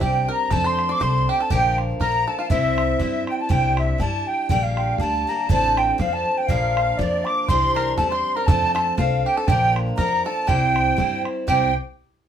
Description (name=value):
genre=celtic folk, Celtic polka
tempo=120 BPM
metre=2/4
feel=swing 56% on 8ths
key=C mixolydian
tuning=A4 = 437 Hz
part: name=wooden flute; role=melody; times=0.0-11.7 s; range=D5 to D6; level=-22 LUFS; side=right 1 dB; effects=none
part: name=bluegrass banjo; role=second line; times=0.0-3.2, 7.5-11.7 s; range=E4 to D5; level=-32 LUFS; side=right 3 dB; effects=none
part: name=musette accordion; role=second line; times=0.0-11.7 s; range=D5 to D6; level=-27 LUFS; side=left 1 dB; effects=none
part: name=picked steel-string acoustic guitar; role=accompaniment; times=0.0-11.7 s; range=A2 to C5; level=-26 LUFS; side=equal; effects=none
part: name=upright bass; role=bass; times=0.0-11.7 s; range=A1 to G2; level=-25 LUFS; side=left 1 dB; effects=none
part: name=bodhran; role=percussion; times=0.0-11.7 s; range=none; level=-24 LUFS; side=right 2 dB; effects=none
room=moderate studio ambience, RT60 0.5 s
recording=band playing live in one room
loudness=-18 LUFS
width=side -9 dB against mid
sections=0.0-3.5 A section; 3.5-11.5 A section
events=none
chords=0.0 Csus2; 0.5 F6; 1.5 Bb; 2.5 C; 3.5 Cadd9; 4.5 Gm/Bb; 5.5 Dm7/A; 6.5 Bb; 7.5 Cadd9; 8.5 F6; 9.5 Bb; 10.5 C